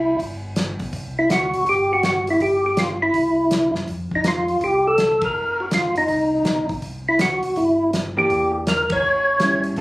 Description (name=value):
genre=soul jazz organ trio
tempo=163 BPM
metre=4/4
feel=swing 65% on 8ths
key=C mixolydian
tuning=A4 = 441 Hz
part: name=percussive tonewheel organ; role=melody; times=0.0-9.6 s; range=Eb4 to Db5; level=-18 LUFS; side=equal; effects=slow rotary speaker, chorus vibrato
part: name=mellow tonewheel organ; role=bass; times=0.0-9.8 s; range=E#1 to F#2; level=-32 LUFS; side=equal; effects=slow rotary speaker
part: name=warm soul drum kit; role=drums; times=0.2-9.8 s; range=hi-hat, kick drum, ride cymbal, snare drum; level=-26 LUFS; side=equal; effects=none
part: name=hollow-body jazz guitar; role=accompaniment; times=8.2-9.8 s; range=D3 to G4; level=-24 LUFS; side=right 1 dB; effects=none
room=moderate club reverb, RT60 0.5 s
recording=recorded on a phone in the room, club reverb, compression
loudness=-17 LUFS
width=side -20 dB against mid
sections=0.0-9.8 A section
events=band accent 5.2, 8.8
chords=0.0 C; 2.4 Em/G; 3.1 C; 3.9 F; 5.3 Bmaj7#11; 6.8 C; 8.3 Em7b5; 9.0 A7